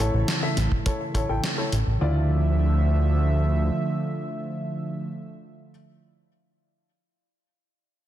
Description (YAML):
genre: synthwave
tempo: 104 BPM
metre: 4/4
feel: straight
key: D minor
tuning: A4 = 440 Hz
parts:
  - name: warm analog pad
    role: sustained chords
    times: 0.0-5.1 s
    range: C#3 to E5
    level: -28 LUFS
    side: right 2 dB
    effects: chorus, sidechain pumping
  - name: dark baby grand piano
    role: stabs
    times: 0.0-5.7 s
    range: E4 to G5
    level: -32 LUFS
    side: left 3 dB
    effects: low-pass filter, tape echo
  - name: fat analog bass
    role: bass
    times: 0.0-3.7 s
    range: A1 to D2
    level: -22 LUFS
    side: equal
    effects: tube saturation, sidechain pumping
  - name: gated 80s digital drum machine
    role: drums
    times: 0.3-1.8 s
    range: hi-hat, snare drum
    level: -29 LUFS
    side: equal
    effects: gated reverb, gated reverb snare, overdrive, small room ambience
  - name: kick drum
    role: drums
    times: 0.7-1.3 s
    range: none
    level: -26 LUFS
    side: equal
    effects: small room ambience
room: light reverb, studio ambience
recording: dense, heavily limited modern master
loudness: -22 LUFS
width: side -12 dB against mid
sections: 0.0-2.0 A section; 2.0-4.3 B section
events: filter sweep on grand piano 0.0-2.0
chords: 0.0 A; 2.0 Dmadd9